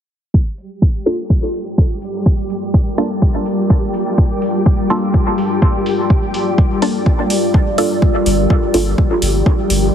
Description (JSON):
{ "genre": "dub techno", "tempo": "125 BPM", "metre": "4/4", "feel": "swing 55% on 16ths", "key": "G minor", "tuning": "A4 = 440 Hz", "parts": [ { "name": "deep dark ambient pad", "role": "sustained chords", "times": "2.1-9.9 s", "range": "G3 to D5", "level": "-19 LUFS", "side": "left 2 dB", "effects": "chorus, built-in reverb, sidechain pumping" }, { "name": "electronic kick drum", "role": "drums", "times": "0.3-9.6 s", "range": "none", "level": "-13 LUFS", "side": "equal", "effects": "small room ambience" }, { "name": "flickering grainy texture", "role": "texture", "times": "0.7-9.9 s", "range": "G3 to G4", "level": "-23 LUFS", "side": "equal", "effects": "built-in reverb, sidechain pumping" }, { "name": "electronic hi-hat", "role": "drums", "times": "0.6-9.8 s", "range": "none", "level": "-24 LUFS", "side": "equal", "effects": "small room ambience" }, { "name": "filtered dub chord stab", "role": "stabs", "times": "1.1-8.9 s", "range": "Bb3 to A4", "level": "-21 LUFS", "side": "right 1 dB", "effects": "phaser, sidechain pumping, dub echo" }, { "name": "warm sub bass", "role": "bass", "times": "8.3-9.9 s", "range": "G1", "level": "-17 LUFS", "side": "equal", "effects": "sidechain pumping" } ], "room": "light reverb, digital ambience", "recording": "heavily compressed radio sound, low-pass filter", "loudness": "-13 LUFS", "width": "side -9 dB against mid", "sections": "0.3-8.0 A section; 8.0-9.9 B section", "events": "filter sweep on ambient pad 0.3-8.0; filter sweep 0.3-8.0; filter sweep on synth stab 8.0-9.9", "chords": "0.3 Gm7" }